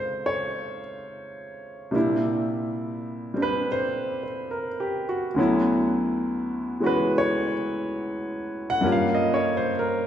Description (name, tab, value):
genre	jazz ballad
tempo	69 BPM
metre	4/4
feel	swing 68% on 8ths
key	unclear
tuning	A4 = 441 Hz
part	clear grand piano	solo	0.0-10.1 s	D2 to F#5	-23 LUFS	equal	none
room	wet recital hall reverb, RT60 1.8 s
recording	recorded in a church or concert hall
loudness	-23 LUFS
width	side -10 dB against mid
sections	0.0-10.1 A section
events	none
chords	0.0 Dbmaj9; 1.9 C9; 5.4 Dmaj13; 8.8 Gm7b5